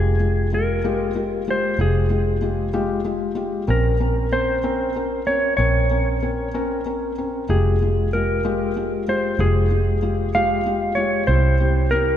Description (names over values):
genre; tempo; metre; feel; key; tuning
pop; 63 BPM (dotted quarters); 6/8; straight; F minor; A4 = 441 Hz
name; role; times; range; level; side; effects
clean lap steel guitar; melody; 0.0-12.2 s; Ab4 to F5; -23 LUFS; equal; none
felt-muted upright piano; accompaniment; 0.0-12.2 s; Ab3 to Bb4; -24 LUFS; left 4 dB; none
vintage muted fingered electric bass; bass; 0.0-12.2 s; F1 to C2; -22 LUFS; right 1 dB; none
room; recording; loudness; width
moderate church reverb, RT60 3.4 s; recorded in a church or concert hall; -18 LUFS; side -10 dB against mid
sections
0.0-12.2 A section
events
none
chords
0.0 Fmadd9; 3.7 Bbmadd9; 7.5 Fmadd9; 11.3 C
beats
0.84 | 1.79 2.73 | 3.68 4.63 | 5.58 6.53 | 7.49 8.44 | 9.39 10.34 | 11.28